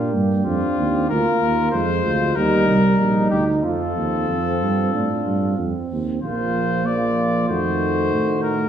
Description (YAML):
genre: classical, brass quintet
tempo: 94 BPM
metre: 4/4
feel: rubato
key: Bb major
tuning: A4 = 438 Hz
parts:
  - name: warm trumpet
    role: melody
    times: 0.0-8.7 s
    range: F4 to D5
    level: -24 LUFS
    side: left 5 dB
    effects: none
  - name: mellow flugelhorn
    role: second line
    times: 0.0-8.7 s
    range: Eb4 to G4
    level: -26 LUFS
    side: right 5 dB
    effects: none
  - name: dark trombone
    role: accompaniment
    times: 0.0-8.7 s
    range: Eb3 to D4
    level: -25 LUFS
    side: right 2 dB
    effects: none
  - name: mellow French horn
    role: accompaniment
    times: 0.0-8.7 s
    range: A3 to G4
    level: -26 LUFS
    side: left 3 dB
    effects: none
  - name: mellow tuba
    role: bass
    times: 0.0-8.7 s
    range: Bb1 to Bb2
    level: -22 LUFS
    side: right 3 dB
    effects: none
room: moderate scoring stage reverb, RT60 1.7 s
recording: small room reverb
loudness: -17 LUFS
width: side -9 dB against mid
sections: 0.0-8.7 A section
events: none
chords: 0.0 Bb; 1.1 Bb7/D; 2.4 Eb; 3.6 F; 6.2 Bb; 7.5 F7b9